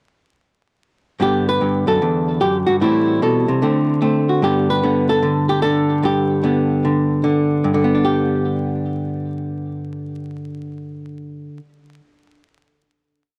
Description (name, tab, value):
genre	solo jazz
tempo	149 BPM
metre	4/4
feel	swing 66% on 8ths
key	G major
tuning	A4 = 440 Hz
part	archtop guitar, miked and amplified	solo	1.2-11.9 s	E2 to B4	-19 LUFS	equal	tape echo
room	light reverb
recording	dark, warm production, vinyl crackle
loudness	-18 LUFS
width	mono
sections	1.2-7.6 A section; 7.6-10.9 final chord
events	none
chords	1.2 Gmaj7; 2.0 Em7; 2.8 Am7; 3.6 D7; 4.4 G